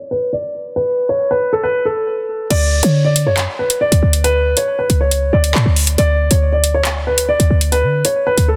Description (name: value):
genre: hip hop, drill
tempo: 138 BPM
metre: 4/4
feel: half-time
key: unclear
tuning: A4 = 440 Hz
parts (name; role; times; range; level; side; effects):
- dark upright piano; melody; 0.1-8.6 s; A4 to D5; -19 LUFS; equal; tape echo
- short 808-style bass; bass; 2.5-8.6 s; C#2 to D3; -17 LUFS; equal; none
- drill drum kit; drums; 2.5-8.5 s; crash cymbal, handclaps, hi-hat; -21 LUFS; equal; none
room: light reverb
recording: dense, heavily limited modern master, low-pass filter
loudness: -15 LUFS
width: mono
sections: 0.0-2.5 A section; 2.5-8.6 B section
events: filter sweep 0.0-2.5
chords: none